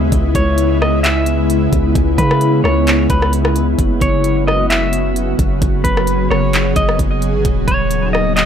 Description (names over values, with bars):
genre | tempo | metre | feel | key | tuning
hip hop, atmospheric cloud-rap | 131 BPM | 4/4 | half-time | C# dorian | A4 = 440 Hz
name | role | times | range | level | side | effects
ethereal airy pad | sustained chords | 0.0-8.5 s | C#3 to G#4 | -17 LUFS | left 1 dB | ensemble chorus, built-in reverb, sidechain pumping
long sustained 808-style bass | bass | 0.0-8.5 s | D#1 to C#3 | -18 LUFS | equal | none
trap drum kit | drums | 0.1-8.5 s | handclaps, hi-hat, kick drum, rim click | -18 LUFS | equal | overdrive
clean electric guitar | melody | 0.4-8.5 s | B4 to E5 | -20 LUFS | equal | harmonic tremolo, low-pass filter, digital delay
room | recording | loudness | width
light reverb | none | -12 LUFS | side -8 dB against mid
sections
0.0-8.5 A section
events
none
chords
0.0 C#m7; 3.8 F#sus4; 7.4 D#m7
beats
| 0.12 0.58 1.04 1.50 | 1.95 2.41 2.87 3.33 | 3.79 4.24 4.70 5.16 | 5.62 6.08 6.53 6.99 | 7.45 7.91 8.37